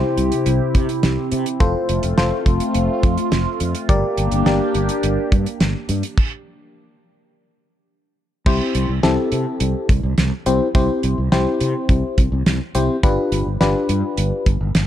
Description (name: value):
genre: synth-pop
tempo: 105 BPM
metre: 4/4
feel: straight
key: unclear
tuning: A4 = 440 Hz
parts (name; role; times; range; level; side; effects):
- FM electric piano; accompaniment; 0.0-14.5 s; C4 to D5; -22 LUFS; left 3 dB; chorus
- phased analog pad; sustained chords; 0.0-6.2 s; C3 to G4; -22 LUFS; equal; phaser, chorus
- sustaining fretless electric bass; bass; 0.2-14.9 s; F1 to C3; -20 LUFS; equal; lush chorus
- damped 70s drum kit; drums; 0.2-14.9 s; crash cymbal, hi-hat, kick drum, snare drum; -19 LUFS; right 1 dB; none
room: light reverb, small room reverb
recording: dark, warm production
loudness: -16 LUFS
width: side -11 dB against mid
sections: 0.0-8.5 A section; 8.5-14.9 B section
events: stop 6.2-8.5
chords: 0.0 C; 1.6 F; 3.9 Gm; 6.2 N.C.; 8.5 C; 13.0 G7